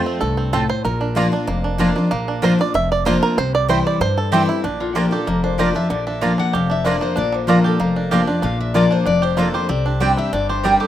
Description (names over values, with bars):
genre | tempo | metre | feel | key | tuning
bluegrass | 190 BPM | 4/4 | straight | unclear | A4 = 440 Hz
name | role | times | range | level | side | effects
bluegrass banjo | melody | 0.0-10.9 s | D3 to E5 | -23 LUFS | right 5 dB | none
picked steel-string acoustic guitar | accompaniment | 0.0-10.9 s | F2 to G4 | -19 LUFS | left 2 dB | none
upright bass | bass | 0.2-10.8 s | F1 to G2 | -25 LUFS | left 1 dB | none
mandolin | stabs | 0.5-10.7 s | Bb3 to Bb5 | -21 LUFS | right 4 dB | none
picked steel-string acoustic guitar | melody | 4.8-10.9 s | F4 to F#5 | -23 LUFS | left 6 dB | none
room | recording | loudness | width
small room ambience | rough home demo mix | -16 LUFS | side -11 dB against mid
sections
0.0-4.6 A section; 4.6-10.9 B section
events
five-string banjo solo 0.0-4.6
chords
0.0 F; 0.9 Bb; 3.4 C; 4.6 Bb; 9.7 Csus2